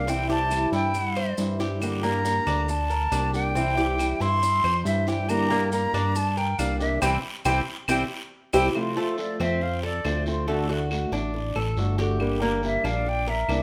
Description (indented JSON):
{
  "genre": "latin, Cuban son and guajira",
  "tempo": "138 BPM",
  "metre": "4/4",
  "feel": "straight",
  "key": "F major",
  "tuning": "A4 = 440 Hz",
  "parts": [
    { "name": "silver concert flute", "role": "melody", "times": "0.0-13.6 s", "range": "D5 to C6", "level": "-29 LUFS", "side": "equal", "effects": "none" },
    { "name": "fingerpicked old ladder-braced acoustic guitar", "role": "accompaniment", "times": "0.0-13.6 s", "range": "C3 to G4", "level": "-31 LUFS", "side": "equal", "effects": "none" },
    { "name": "Cuban tres", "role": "arpeggios", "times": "0.0-13.6 s", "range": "A3 to C5", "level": "-32 LUFS", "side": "equal", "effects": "none" },
    { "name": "fat analog bass", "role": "bass", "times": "0.0-13.6 s", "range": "G1 to G2", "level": "-30 LUFS", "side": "equal", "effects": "none" },
    { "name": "guiro", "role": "percussion", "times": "0.1-13.6 s", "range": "none", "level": "-43 LUFS", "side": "equal", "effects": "none" },
    { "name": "maracas", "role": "percussion", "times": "0.1-8.6 s", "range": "none", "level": "-44 LUFS", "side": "equal", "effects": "none" },
    { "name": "claves", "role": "percussion", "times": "0.5-13.6 s", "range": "none", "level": "-38 LUFS", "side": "equal", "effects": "none" }
  ],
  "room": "light reverb",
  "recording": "none",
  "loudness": "-25 LUFS",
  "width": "mono",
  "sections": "0.0-8.8 A section; 8.8-13.6 B section",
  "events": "band accent 7.0-8.8; flute solo 8.8-13.6",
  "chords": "0.1 C; 1.8 Gm; 3.6 C; 5.3 Gm; 7.0 C; 8.8 F; 10.5 D; 12.2 Gm"
}